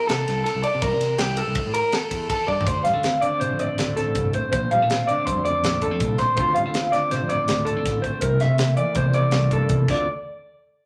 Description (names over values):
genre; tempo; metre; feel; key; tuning
math rock and midwest emo; 162 BPM; 5/4; straight; D minor; A4 = 440 Hz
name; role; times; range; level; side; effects
electric guitar through a small old amp; arpeggios; 0.0-10.1 s; G4 to F5; -25 LUFS; equal; spring reverb
fuzz fingered electric bass; bass; 0.1-10.1 s; A1 to D3; -32 LUFS; equal; overdrive
crisp fusion drum kit; drums; 0.1-10.0 s; crash cymbal, hi-hat, kick drum, ride cymbal, snare drum, toms; -30 LUFS; equal; none
mellow electric guitar; accompaniment; 2.7-10.1 s; D2 to F4; -26 LUFS; equal; harmonic tremolo
room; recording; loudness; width
wet club reverb, RT60 0.6 s; none; -22 LUFS; mono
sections
0.0-2.7 A section; 2.7-10.1 B section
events
drum fill 2.5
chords
0.0 C7(no3); 2.7 Dm7; 4.5 Bbmaj9; 6.4 Dm7; 8.2 C13; 9.9 Dm7; 10.1 N.C.